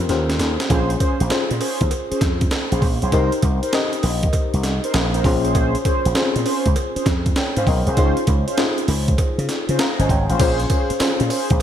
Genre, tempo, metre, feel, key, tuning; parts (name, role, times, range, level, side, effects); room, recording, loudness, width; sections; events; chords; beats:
R&B, new jack swing; 99 BPM; 4/4; swing 66% on 16ths; Bb dorian; A4 = 441 Hz
FM electric piano with auto-pan; accompaniment; 0.0-11.6 s; C4 to Bb5; -24 LUFS; left 3 dB
slap bass with an envelope filter; bass; 0.0-11.6 s; G1 to Db3; -21 LUFS; equal
breakbeat sampler-style drum kit; drums; 0.1-11.6 s; crash cymbal, hi-hat, kick drum, snare drum, tambourine; -21 LUFS; equal; overdrive, gated reverb
mellow synth brass; stabs; 0.7-11.5 s; Db4 to C5; -25 LUFS; right 1 dB; chorus
cowbell; percussion; 0.7-11.6 s; -35 LUFS; right 7 dB
light reverb, digital ambience; bright 1980s-style digital production; -17 LUFS; side -10 dB against mid
0.7-10.4 A section; 10.4-11.6 B section
drum fill 0.1-0.7
0.0 Eb9; 0.7 Bbm9; 3.1 Cm7; 5.2 Bbm9; 8.0 Dbmaj7; 10.4 Bbm9
0.09 | 0.70 1.31 1.91 2.52 | 3.12 3.73 4.34 4.94 | 5.55 6.15 6.76 7.37 | 7.97 8.58 9.18 9.79 | 10.40 11.00 11.61